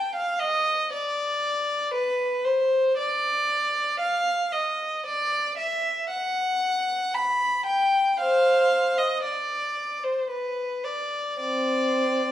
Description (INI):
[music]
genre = classical, baroque-style suite movement for unaccompanied violin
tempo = 57 BPM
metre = 3/4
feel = rubato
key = unclear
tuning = A4 = 440 Hz
[part]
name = rich violin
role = solo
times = 0.0-12.3 s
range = C4 to B5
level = -22 LUFS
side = equal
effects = none
[sound]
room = moderate recital hall reverb, RT60 1.5 s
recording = minimal, uncompressed stereo recording, vinyl crackle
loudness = -22 LUFS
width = side -12 dB against mid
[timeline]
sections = 0.0-12.3 A section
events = none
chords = none